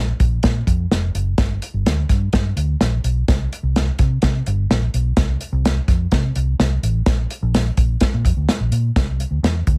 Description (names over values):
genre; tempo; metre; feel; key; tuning
uptempo 1960s-style soul; 127 BPM; 4/4; straight; C mixolydian; A4 = 440 Hz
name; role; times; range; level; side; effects
vintage muted fingered electric bass; bass; 0.0-9.8 s; F1 to C3; -22 LUFS; equal; none
warm soul drum kit; drums; 0.2-9.8 s; hi-hat, kick drum, snare drum; -21 LUFS; equal; none
room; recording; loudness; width
light reverb; heavily compressed radio sound; -19 LUFS; mono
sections
0.0-9.0 A section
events
none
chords
none